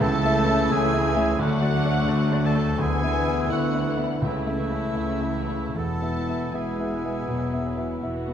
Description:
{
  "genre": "classical",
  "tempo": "72-88 BPM",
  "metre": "4/4",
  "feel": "rubato",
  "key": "A major",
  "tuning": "A4 = 440 Hz",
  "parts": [
    { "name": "muted symphonic violin section", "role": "melody", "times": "0.0-8.0 s", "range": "E5 to A5", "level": "-33 LUFS", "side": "left 3 dB", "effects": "none" },
    { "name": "warm grand piano", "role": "melody", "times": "0.0-8.3 s", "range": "C#2 to E5", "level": "-26 LUFS", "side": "left 2 dB", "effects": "none" },
    { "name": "silver concert flute", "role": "second line", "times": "0.0-8.3 s", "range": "D6 to E6", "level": "-35 LUFS", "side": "right 3 dB", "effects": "none" },
    { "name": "warm oboe", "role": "second line", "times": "0.0-8.0 s", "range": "E4 to A4", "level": "-33 LUFS", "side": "right 2 dB", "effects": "none" },
    { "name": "warm bassoon", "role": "accompaniment", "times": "0.0-8.3 s", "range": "A3 to B3", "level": "-34 LUFS", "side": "right 1 dB", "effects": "none" },
    { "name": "clear trombone section", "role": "sustained chords", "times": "0.0-8.3 s", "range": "B2 to F#3", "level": "-34 LUFS", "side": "right 4 dB", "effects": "none" },
    { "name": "dark French horn section", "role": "sustained chords", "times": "0.0-8.3 s", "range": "A3 to E4", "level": "-32 LUFS", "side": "left 6 dB", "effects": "none" },
    { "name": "muted studio cello section", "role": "bass", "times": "0.0-8.3 s", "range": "E2 to D3", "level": "-32 LUFS", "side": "right 2 dB", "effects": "none" },
    { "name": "muted symphonic double bass section", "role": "bass", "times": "0.0-8.3 s", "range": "E1 to D2", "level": "-31 LUFS", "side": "right 2 dB", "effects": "none" },
    { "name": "muted studio violin section", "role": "second line", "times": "0.4-8.3 s", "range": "A3 to E4", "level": "-37 LUFS", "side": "left 4 dB", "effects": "none" },
    { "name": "muted symphonic viola section", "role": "accompaniment", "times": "0.4-8.3 s", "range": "E3 to F#4", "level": "-35 LUFS", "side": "right 1 dB", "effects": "none" }
  ],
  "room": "light reverb",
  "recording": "close, detailed microphones",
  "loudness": "-22 LUFS",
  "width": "side -9 dB against mid",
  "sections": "0.0-8.3 A section",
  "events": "none",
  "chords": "0.0 A/C#; 1.4 D; 2.8 E7/D; 4.2 A/C#; 5.8 E"
}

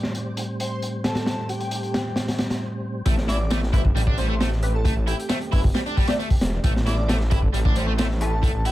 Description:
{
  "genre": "breakbeat, breaks",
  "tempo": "134 BPM",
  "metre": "4/4",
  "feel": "straight",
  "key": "A minor",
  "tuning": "A4 = 441 Hz",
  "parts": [
    { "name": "percussive tonewheel organ", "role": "sustained chords", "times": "0.0-8.7 s", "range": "A2 to C5", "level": "-32 LUFS", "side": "right 1 dB", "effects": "chorus vibrato, fast rotary speaker, sidechain pumping" },
    { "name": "crunchy breakbeat drum kit", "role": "drums", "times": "0.0-8.7 s", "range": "hi-hat, kick drum, snare drum", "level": "-23 LUFS", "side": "equal", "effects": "low-pass filter on kick, low-pass filter on hats, low-pass filter on snare, low-pass filter on room" },
    { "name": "airy dreamy lead", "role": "melody", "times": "0.6-8.7 s", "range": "G4 to D5", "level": "-32 LUFS", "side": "equal", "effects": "chorus, old record sound, digital delay" },
    { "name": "overdriven electric guitar", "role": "riff", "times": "3.1-8.7 s", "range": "G3 to E4", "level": "-30 LUFS", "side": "equal", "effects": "tube saturation, digital delay" },
    { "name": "detuned saw bass", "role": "bass", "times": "3.1-8.7 s", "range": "E1 to A1", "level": "-23 LUFS", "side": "equal", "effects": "none" },
    { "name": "band-passed chord stab", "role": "stabs", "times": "3.7-8.3 s", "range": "A3 to D5", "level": "-32 LUFS", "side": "left 1 dB", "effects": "phaser, ensemble chorus, cassette tape, digital delay" }
  ],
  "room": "little or no reverb",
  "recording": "none",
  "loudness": "-20 LUFS",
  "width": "side -16 dB against mid",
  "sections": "0.0-3.1 A section; 3.1-8.7 B section",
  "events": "break 2.6-3.1; drop 3.1-8.7",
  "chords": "0.0 Am7"
}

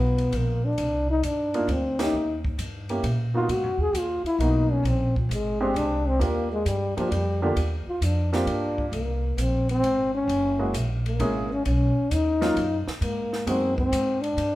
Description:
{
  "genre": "jazz, small-group swing and bop",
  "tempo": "132 BPM",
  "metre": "3/4",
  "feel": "swing 68% on 8ths",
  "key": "unclear",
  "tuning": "A4 = 444 Hz",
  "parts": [
    { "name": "mellow trombone", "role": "melody", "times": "0.0-14.6 s", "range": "D3 to Ab4", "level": "-25 LUFS", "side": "left 1 dB", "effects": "plate reverb" },
    { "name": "warm baby grand piano", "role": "accompaniment", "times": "0.0-14.2 s", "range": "F#3 to Ab4", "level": "-29 LUFS", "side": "right 2 dB", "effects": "none" },
    { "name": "upright bass", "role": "bass", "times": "0.0-14.6 s", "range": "Gb1 to Bb2", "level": "-26 LUFS", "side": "equal", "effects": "none" },
    { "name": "compact cocktail drum kit", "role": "drums", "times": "0.2-14.5 s", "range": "hi-hat, kick drum, ride cymbal, snare drum", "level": "-36 LUFS", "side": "equal", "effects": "none" }
  ],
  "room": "moderate large studio reverb, RT60 1.0 s",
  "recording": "heard from further back in the room",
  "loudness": "-22 LUFS",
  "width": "side -16 dB against mid",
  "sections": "0.0-8.9 A section; 8.9-14.6 B section",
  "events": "band accent 1.9; trombone solo 8.9-14.6",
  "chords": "0.0 Db9 (rootless); 0.8 Cm9; 2.1 Eb; 3.5 Abm9 (rootless); 4.9 Bb13; 6.2 Ebmaj9; 8.9 Abadd9; 10.3 Gb9; 11.7 Badd9; 13.0 Ab9"
}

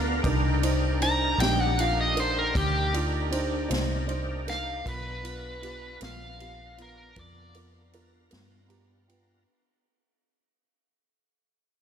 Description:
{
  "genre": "slow blues",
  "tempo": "52 BPM (dotted quarters)",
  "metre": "12/8",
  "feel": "straight",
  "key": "unclear",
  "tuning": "A4 = 439 Hz",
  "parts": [
    { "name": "dark upright piano", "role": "accompaniment", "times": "0.0-9.4 s", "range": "B3 to A#5", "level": "-33 LUFS", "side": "right 2 dB", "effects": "slapback echo" },
    { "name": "overdriven tonewheel organ", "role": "sustained chords", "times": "0.0-9.4 s", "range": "B3 to A#5", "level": "-34 LUFS", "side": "left 1 dB", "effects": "slow rotary speaker, chorus vibrato" },
    { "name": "vintage muted fingered electric bass", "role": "bass", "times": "0.0-9.4 s", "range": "Bb1 to G2", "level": "-29 LUFS", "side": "equal", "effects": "none" },
    { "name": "swinging big-band drum kit", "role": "drums", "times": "0.2-9.3 s", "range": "kick drum, ride cymbal, snare drum", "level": "-33 LUFS", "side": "equal", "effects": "none" },
    { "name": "smooth overdriven lead guitar", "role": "melody", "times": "1.0-7.6 s", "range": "G4 to Bb5", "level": "-30 LUFS", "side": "equal", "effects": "none" }
  ],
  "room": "moderate lush hall reverb, RT60 2.7 s",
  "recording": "big arena sound",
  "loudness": "-24 LUFS",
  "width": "side -8 dB against mid",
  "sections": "0.0-9.5 A section",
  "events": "fade-out 0.0-9.5; upright piano fill 0.0, 8.3-9.5",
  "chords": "0.2 Cm7; 4.9 G7#9"
}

